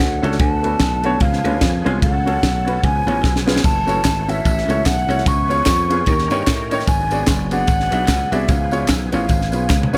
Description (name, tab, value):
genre	uptempo gospel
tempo	148 BPM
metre	4/4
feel	swing 58% on 8ths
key	F# minor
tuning	A4 = 440 Hz
part	breathy alto ocarina	melody	0.0-9.9 s	E5 to C#6	-24 LUFS	equal	dub echo
part	overdriven tonewheel organ	sustained chords	0.0-10.0 s	D3 to A#4	-32 LUFS	equal	slow rotary speaker, chorus vibrato
part	dry thumbed slap bass	bass	0.0-10.0 s	E#1 to A2	-24 LUFS	equal	none
part	crisp fusion drum kit	drums	0.0-10.0 s	crash cymbal, kick drum, ride cymbal, snare drum, toms	-21 LUFS	equal	none
part	clear concert grand piano	accompaniment	0.2-10.0 s	G#2 to E5	-26 LUFS	equal	dub echo
part	tambourine and handclaps	percussion	3.6-10.0 s	none	-34 LUFS	equal	dub echo
room	light reverb, studio ambience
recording	echo-heavy mix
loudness	-18 LUFS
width	mono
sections	0.0-10.0 A section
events	drum fill 3.2-3.6, 9.7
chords	0.4 Bm7/D; 1.2 C#7; 2.0 F#m/C#; 2.8 C#7; 3.6 F#m7; 5.3 C#7; 6.1 D#7; 6.9 G#m7b5; 8.5 C#7